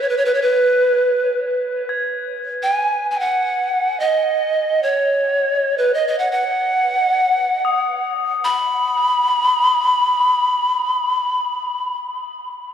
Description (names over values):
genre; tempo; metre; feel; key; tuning
world meditative, free-time meditation music; free time; none; none; unclear; A4 = 440 Hz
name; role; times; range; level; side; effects
breathy bright pan flute; melody; 0.0-12.0 s; B4 to B5; -16 LUFS; equal; dub echo
crotales; texture; 0.0-12.7 s; D#6 to D#7; -28 LUFS; left 6 dB; none
room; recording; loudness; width
wet echo chamber reverb, RT60 1.6 s, small room ambience; echo-heavy mix, cassette tape; -16 LUFS; side -8 dB against mid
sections
0.0-1.7 A section; 1.7-12.7 A section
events
none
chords
none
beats
free time